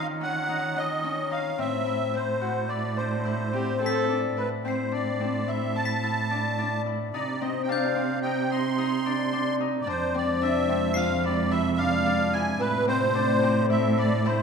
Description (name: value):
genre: contemporary instrumental, chamber music in an uneven meter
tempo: 109 BPM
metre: 5/4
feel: straight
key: A harmonic minor from 4.4 s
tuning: A4 = 440 Hz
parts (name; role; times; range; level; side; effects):
- musette accordion; melody; 0.0-14.4 s; B4 to C6; -29 LUFS; right 3 dB; none
- Celtic harp; arpeggios; 0.0-14.4 s; C4 to F#4; -28 LUFS; left 8 dB; none
- muted cello; bass; 0.0-14.4 s; F2 to D#3; -29 LUFS; right 5 dB; none
- glockenspiel with brass mallets; texture; 0.0-12.1 s; F6 to C7; -39 LUFS; equal; none
- warm viola; second line; 3.5-4.3 s; G4 to A4; -30 LUFS; right 2 dB; none
- warbly tape-like pad; sustained chords; 10.4-14.4 s; C3 to F4; -30 LUFS; equal; chorus, built-in reverb
room: wet recital hall reverb, RT60 1.4 s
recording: minimal, uncompressed stereo recording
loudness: -23 LUFS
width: side -6 dB against mid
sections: 0.0-4.4 A section; 4.4-14.4 B section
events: none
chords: 0.0 D#m; 1.6 Am; 4.4 Amadd9; 7.1 Cmadd9; 9.9 Fm; 12.6 Am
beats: 0.49 1.04 | 1.58 2.13 2.69 3.24 3.81 | 4.37 4.92 5.48 6.03 6.58 | 7.14 7.69 8.24 8.78 9.33 | 9.88 10.42 10.96 11.51 12.05 | 12.60 13.15 13.70 14.26